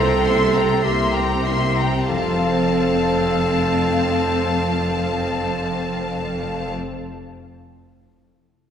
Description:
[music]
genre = classical, slow romantic movement for symphony orchestra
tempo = 52 BPM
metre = 4/4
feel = rubato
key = F major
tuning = A4 = 439 Hz
[part]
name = rich studio violin section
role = melody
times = 0.0-6.7 s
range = A5 to C6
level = -25 LUFS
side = left 3 dB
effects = none
[part]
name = clear studio violin section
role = second line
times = 0.0-6.7 s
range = E5 to G5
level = -28 LUFS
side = left 4 dB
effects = none
[part]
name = warm clarinet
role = second line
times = 0.0-6.7 s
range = G4 to A4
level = -23 LUFS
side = right 4 dB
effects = none
[part]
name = rich studio viola section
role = accompaniment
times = 0.0-6.7 s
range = Bb3 to C4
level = -26 LUFS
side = left 3 dB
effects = none
[part]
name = concert harp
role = arpeggios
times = 0.0-7.0 s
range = C3 to F5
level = -27 LUFS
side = left 1 dB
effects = none
[part]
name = clear studio cello section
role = bass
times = 0.0-6.7 s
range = F2 to C3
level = -27 LUFS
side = right 1 dB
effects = none
[part]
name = rich studio double bass section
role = bass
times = 0.0-6.7 s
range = F1 to C2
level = -26 LUFS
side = right 1 dB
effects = none
[sound]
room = wet concert hall reverb, RT60 2.1 s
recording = heard from further back in the room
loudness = -18 LUFS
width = side -8 dB against mid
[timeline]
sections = 0.0-2.1 A section; 2.1-6.8 B section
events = slowing down 0.0-2.1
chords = 0.0 C7; 2.1 F

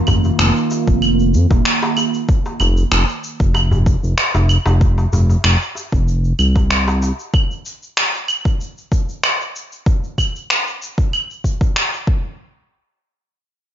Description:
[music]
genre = organic downtempo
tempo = 95 BPM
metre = 4/4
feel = swing 53% on 16ths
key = unclear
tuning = A4 = 441 Hz
[part]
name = warbly tape-like pad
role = sustained chords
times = 0.0-2.3 s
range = Eb3 to F4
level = -20 LUFS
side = right 4 dB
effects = chorus, built-in reverb, phaser, sidechain pumping
[part]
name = smooth synth bass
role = bass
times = 0.1-7.1 s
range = Eb1 to F2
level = -15 LUFS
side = equal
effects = sidechain pumping
[part]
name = electronic claves, shaker and finger snaps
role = drums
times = 0.1-12.0 s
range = none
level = -19 LUFS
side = equal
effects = overdrive
[part]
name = electronic kick drum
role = drums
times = 0.1-12.2 s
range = none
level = -16 LUFS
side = equal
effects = overdrive
[part]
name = darbuka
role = percussion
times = 0.1-7.2 s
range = none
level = -24 LUFS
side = left 1 dB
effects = none
[sound]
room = light reverb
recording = nothing above 7.5 kHz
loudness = -14 LUFS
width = side -10 dB against mid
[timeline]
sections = 0.0-12.4 A section; 12.4-13.7 B section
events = none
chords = 0.0 Eb5/F; 2.3 F5; 7.3 N.C.

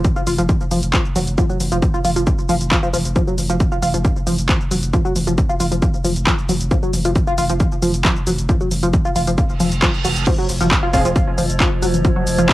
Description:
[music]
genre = driving peak-time techno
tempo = 135 BPM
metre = 4/4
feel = straight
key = unclear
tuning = A4 = 440 Hz
[part]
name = saturated sub bass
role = bass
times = 0.0-12.5 s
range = F1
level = -22 LUFS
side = equal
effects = tube saturation, sidechain pumping, low-pass filter
[part]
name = electronic kick drum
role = drums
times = 0.0-12.5 s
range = none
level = -18 LUFS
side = equal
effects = overdrive, cassette tape
[part]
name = techno drum kit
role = drums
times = 0.0-12.5 s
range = crash cymbal, handclaps, hi-hat, shaker, toms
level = -22 LUFS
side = equal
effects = overdrive, sidechain pumping on hats, cassette tape, sidechain pumping on toms, sidechain pumping on perc, sidechain pumping on cymbals
[part]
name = tight sequenced synth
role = riff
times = 0.2-12.4 s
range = F3 to F4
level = -21 LUFS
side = equal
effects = chorus, phaser, overdrive, sidechain pumping, cassette tape, analog delay
[part]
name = reverse cymbal and impact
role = sound effects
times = 9.6-12.0 s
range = none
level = -28 LUFS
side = right 4 dB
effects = none
[part]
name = metallic inharmonic drone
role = drone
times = 10.5-12.5 s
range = F3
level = -23 LUFS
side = right 1 dB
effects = chorus, built-in reverb, sidechain pumping, cassette tape
[part]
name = rave stab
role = stabs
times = 10.9-11.1 s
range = F3 to Ab4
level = -25 LUFS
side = right 2 dB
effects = chorus, built-in reverb, sidechain pumping, cassette tape, analog delay
[sound]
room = light reverb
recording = home recording on cassette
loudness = -15 LUFS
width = side -16 dB against mid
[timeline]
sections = 0.0-10.3 A section; 10.3-12.5 B section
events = reverse cymbal 9.6-10.3; drop 10.3-12.5; impact 10.3-12.0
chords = 0.0 N.C.; 10.3 Fm

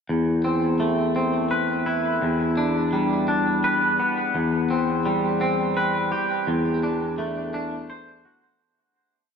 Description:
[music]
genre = post-rock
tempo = 56 BPM (dotted quarters)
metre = 6/8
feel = straight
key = unclear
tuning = A4 = 440 Hz
[part]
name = twangy electric guitar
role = solo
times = 0.1-8.6 s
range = E2 to C5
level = -21 LUFS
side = equal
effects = lush chorus, diffuse ambient delay
[sound]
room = wet lush hall reverb, RT60 2.7 s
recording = dreamy mix soaked in reverb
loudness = -20 LUFS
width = side -6 dB against mid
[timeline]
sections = 0.1-8.6 A section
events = fade-out 6.5-8.6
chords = 0.1 Amadd9/E; 2.2 Em7; 4.4 Cmaj7/E; 6.5 D7/E

